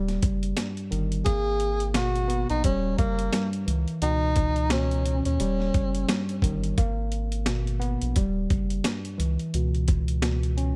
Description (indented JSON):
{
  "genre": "hip hop, boom-bap hip-hop",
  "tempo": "87 BPM",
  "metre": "4/4",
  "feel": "swing 59% on 16ths",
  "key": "unclear",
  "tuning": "A4 = 435 Hz",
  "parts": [
    { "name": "tine electric piano", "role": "accompaniment", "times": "0.0-10.8 s", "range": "G2 to C#4", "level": "-32 LUFS", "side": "equal", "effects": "overdrive, high-pass filter, low-pass filter" },
    { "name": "soft dub sub bass", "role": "bass", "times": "0.0-10.7 s", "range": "D#1 to D#2", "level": "-30 LUFS", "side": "equal", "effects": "none" },
    { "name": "boom bap sampler-style drum kit", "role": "drums", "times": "0.1-10.8 s", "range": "hi-hat, kick drum, snare drum", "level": "-29 LUFS", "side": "equal", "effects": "none" },
    { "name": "breathy tenor saxophone", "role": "melody", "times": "1.3-6.3 s", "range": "A#3 to G#4", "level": "-31 LUFS", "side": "equal", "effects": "high-pass filter, low-pass filter, digital delay" }
  ],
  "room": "little or no reverb",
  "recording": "none",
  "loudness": "-26 LUFS",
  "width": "mono",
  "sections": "0.0-10.8 A section",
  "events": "none",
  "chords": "0.0 D#; 1.3 G#madd9; 2.6 D#; 3.7 C#m7; 5.4 D#; 6.8 G#madd9; 8.2 D#; 9.2 C#m7"
}